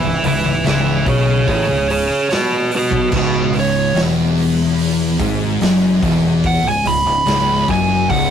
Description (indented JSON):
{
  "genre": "stoner and doom metal",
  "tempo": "73 BPM",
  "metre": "4/4",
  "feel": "straight",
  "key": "C# minor",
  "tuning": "A4 = 440 Hz",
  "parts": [
    { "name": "fuzz lead guitar", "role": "melody", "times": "0.0-8.3 s", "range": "F#4 to B5", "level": "-17 LUFS", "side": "right 2 dB", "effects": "distortion" },
    { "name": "crunchy overdriven guitar", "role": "riff", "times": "0.0-8.3 s", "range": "C#2 to B2", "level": "-21 LUFS", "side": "left 1 dB", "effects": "none" },
    { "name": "thick fuzz guitar", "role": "riff", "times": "0.0-8.3 s", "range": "C#2 to B2", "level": "-21 LUFS", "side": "left 6 dB", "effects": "distortion" },
    { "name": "thick fuzz guitar", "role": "riff", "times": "0.0-8.3 s", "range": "C#2 to B2", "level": "-21 LUFS", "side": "right 3 dB", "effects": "distortion" },
    { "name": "fingered electric bass", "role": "bass", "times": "0.0-8.3 s", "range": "C#1 to B1", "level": "-24 LUFS", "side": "equal", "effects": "overdrive" },
    { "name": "raw garage drum kit", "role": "drums", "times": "0.2-8.3 s", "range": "crash cymbal, hi-hat, kick drum, snare drum", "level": "-24 LUFS", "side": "equal", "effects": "none" }
  ],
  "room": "light reverb",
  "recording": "rough rehearsal-room recording, warm saturation",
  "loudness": "-13 LUFS",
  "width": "side -8 dB against mid",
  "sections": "0.0-8.3 A section",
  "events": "lead electric guitar solo 0.0-8.3",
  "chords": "0.0 C#m",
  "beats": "0.66 1.48 2.31 | 3.13 3.96 4.79 5.61 | 6.44 7.27 8.10"
}